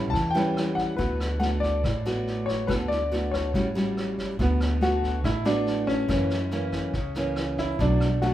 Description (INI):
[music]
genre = bossa nova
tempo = 141 BPM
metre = 4/4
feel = straight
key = D major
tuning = A4 = 440 Hz
[part]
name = warm concert grand piano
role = melody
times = 0.0-8.3 s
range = B3 to B5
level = -28 LUFS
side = left 1 dB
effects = none
[part]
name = clear baby grand piano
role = accompaniment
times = 0.0-1.2 s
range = A4 to F#5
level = -37 LUFS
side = right 5 dB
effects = none
[part]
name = nylon-string guitar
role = accompaniment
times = 0.0-8.3 s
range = F#2 to F#4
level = -27 LUFS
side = equal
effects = none
[part]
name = upright bass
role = bass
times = 0.0-8.3 s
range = A1 to F#2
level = -29 LUFS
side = equal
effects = none
[part]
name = vintage brush drum kit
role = drums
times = 0.1-8.3 s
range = kick drum, rim click, snare drum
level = -33 LUFS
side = equal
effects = none
[sound]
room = moderate large studio reverb, RT60 0.8 s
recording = band playing live in one room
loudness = -23 LUFS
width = side -13 dB against mid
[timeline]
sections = 0.0-4.4 A section; 4.4-8.3 A section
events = none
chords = 0.0 A7; 1.0 D6; 3.5 A6; 4.4 D6; 6.1 F#7; 7.8 Bm7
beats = 0.14 0.56 | 0.99 1.42 1.84 2.27 | 2.69 3.12 3.54 3.97 | 4.39 4.82 5.25 5.67 | 6.09 6.52 6.95 7.37 | 7.79 8.22